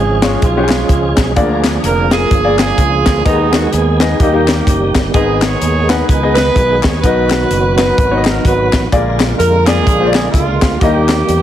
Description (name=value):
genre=uptempo gospel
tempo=127 BPM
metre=4/4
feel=swing 59% on 8ths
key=G# minor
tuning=A4 = 439 Hz
part: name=warm horn section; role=melody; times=0.0-11.4 s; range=G#3 to C#5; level=-16 LUFS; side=right 3 dB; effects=none
part: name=clear grand piano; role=accompaniment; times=0.0-11.4 s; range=G#2 to F#5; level=-18 LUFS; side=left 4 dB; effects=none
part: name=tonewheel organ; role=sustained chords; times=0.0-11.4 s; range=D3 to G#4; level=-19 LUFS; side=right 2 dB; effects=slow rotary speaker, overdrive, chorus vibrato
part: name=modern bright fingered electric bass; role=bass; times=0.0-11.4 s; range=E#1 to E#2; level=-17 LUFS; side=equal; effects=none
part: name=crisp fusion drum kit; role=drums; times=0.2-11.4 s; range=hi-hat, kick drum, snare drum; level=-15 LUFS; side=equal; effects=none
part: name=group handclap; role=percussion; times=0.2-11.2 s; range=none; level=-26 LUFS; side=left 10 dB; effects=none
room=light reverb, small room reverb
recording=heavily compressed radio sound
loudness=-10 LUFS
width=side -11 dB against mid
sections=0.0-11.4 A section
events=none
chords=0.0 C#; 1.4 A#7; 3.3 G#m/D#; 4.2 D#; 5.1 G#m; 7.0 B; 8.9 A#7; 10.8 D#